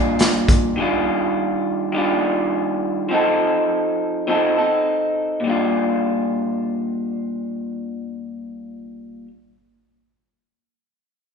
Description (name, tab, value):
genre	indie pop, bedroom pop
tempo	103 BPM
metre	4/4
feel	swing 55% on 16ths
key	Bb major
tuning	A4 = 440 Hz
part	electric guitar through a small old amp	accompaniment	0.0-9.3 s	Bb2 to A4	-19 LUFS	equal	warbly pitch drift
part	raw garage drum kit	drums	0.2-0.6 s	hi-hat, kick drum, snare drum	-17 LUFS	equal	none
room	moderate recital hall reverb, RT60 1.5 s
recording	recorded in a church or concert hall, nothing above 10.7 kHz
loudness	-18 LUFS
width	side -6 dB against mid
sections	0.0-5.4 A section; 5.4-7.8 B section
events	none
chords	0.0 Bb6; 0.8 Ebmaj9; 3.1 F7; 5.4 Bb6